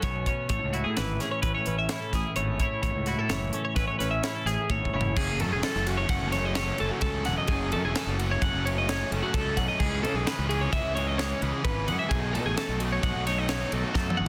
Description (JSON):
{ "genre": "math rock and midwest emo", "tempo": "129 BPM", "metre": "5/4", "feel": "straight", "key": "unclear", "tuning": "A4 = 438 Hz", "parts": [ { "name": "twelve-string electric guitar", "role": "accompaniment", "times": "0.0-7.5 s", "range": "A2 to G#4", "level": "-36 LUFS", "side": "equal", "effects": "none" }, { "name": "twelve-string electric guitar", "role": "arpeggios", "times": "0.0-14.3 s", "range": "F#4 to F#5", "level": "-32 LUFS", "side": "equal", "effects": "spring reverb" }, { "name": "fuzz fingered electric bass", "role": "bass", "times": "0.0-14.3 s", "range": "E1 to C#3", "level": "-33 LUFS", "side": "equal", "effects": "overdrive" }, { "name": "crisp fusion drum kit", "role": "drums", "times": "0.0-14.2 s", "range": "crash cymbal, hi-hat, kick drum, ride cymbal, snare drum, toms", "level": "-34 LUFS", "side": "equal", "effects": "none" }, { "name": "cranked stack guitar", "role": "riff", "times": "5.2-14.3 s", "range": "F#2 to D#4", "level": "-35 LUFS", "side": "equal", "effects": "overdrive, spring reverb" } ], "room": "light reverb", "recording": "dense, heavily limited modern master", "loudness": "-28 LUFS", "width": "mono", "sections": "0.0-5.2 A section; 5.2-14.3 B section", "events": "drum fill 4.7-5.2, 14.0-14.3", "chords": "0.0 B9sus4; 0.5 Amaj7; 2.8 A6; 5.2 F#m7; 9.8 C#m7; 12.1 B7" }